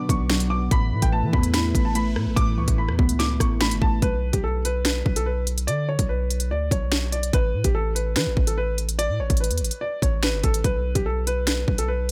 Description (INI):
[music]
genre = hip hop, drill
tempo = 145 BPM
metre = 4/4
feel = half-time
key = unclear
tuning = A4 = 441 Hz
[part]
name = dark grand piano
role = melody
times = 0.0-12.1 s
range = G4 to D6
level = -30 LUFS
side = equal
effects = none
[part]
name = muted felt-like synth keys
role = accompaniment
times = 0.0-4.0 s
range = A2 to E4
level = -29 LUFS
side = equal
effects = chorus
[part]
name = sweeping resonant pad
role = sustained chords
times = 0.0-4.0 s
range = A3 to D5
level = -38 LUFS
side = equal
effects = chorus
[part]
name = long sustained 808-style bass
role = bass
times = 0.1-12.1 s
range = G1 to E3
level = -27 LUFS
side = equal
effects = none
[part]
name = drill drum kit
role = drums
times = 0.1-12.1 s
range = finger snaps, hi-hat, kick drum, rim click, snare drum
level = -25 LUFS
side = equal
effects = none
[sound]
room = digital ambience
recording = none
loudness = -23 LUFS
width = mono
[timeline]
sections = 0.0-4.0 A section; 4.0-12.1 B section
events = none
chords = 0.0 Bm; 0.7 Asus2; 4.0 Bm; 7.3 Asus2; 10.6 N.C.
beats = 0.30 | 0.71 1.13 1.54 1.95 | 2.37 2.78 3.20 3.61 | 4.02 4.44 4.85 5.26 | 5.68 6.09 6.51 6.92 | 7.33 7.75 8.16 8.57 | 8.99 9.40 9.82 10.23 | 10.64 11.06 11.47 11.89